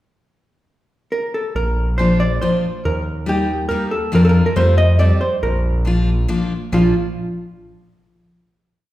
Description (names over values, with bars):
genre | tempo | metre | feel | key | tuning
musette waltz | 139 BPM | 3/4 | straight | Bb major | A4 = 440 Hz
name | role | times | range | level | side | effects
vintage hollow-body jazz guitar | melody | 1.1-6.9 s | F4 to Eb5 | -20 LUFS | right 1 dB | none
fat analog bass | bass | 1.6-6.9 s | Bb1 to F2 | -18 LUFS | equal | none
picked steel-string acoustic guitar | accompaniment | 2.0-6.9 s | F3 to G4 | -20 LUFS | left 2 dB | none
room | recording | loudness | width
wet recital hall reverb, RT60 1.5 s | heard from further back in the room | -15 LUFS | side -15 dB against mid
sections
0.3-1.5 pickup bar; 1.5-6.7 A section; 6.7-8.0 final chord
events
none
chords
0.3 N.C.; 1.5 Bb; 2.8 Eb; 4.1 Bb/F; 4.6 Fadd9; 5.4 Bb